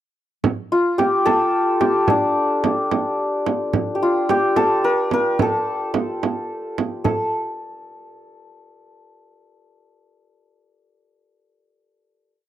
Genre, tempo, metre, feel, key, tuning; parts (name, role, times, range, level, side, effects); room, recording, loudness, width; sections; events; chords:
Persian modal ensemble; 72 BPM (dotted quarters); 6/8; straight; A4 = 440 Hz
frame drum; percussion; 0.4-7.3 s; -22 LUFS; right 6 dB
santur; melody; 0.7-7.4 s; D4 to Bb4+45c; -18 LUFS; left 1 dB
small room ambience; dry, close 1970s-style studio recording; -18 LUFS; side -12 dB against mid
0.4-7.1 A section; 7.1-8.7 final note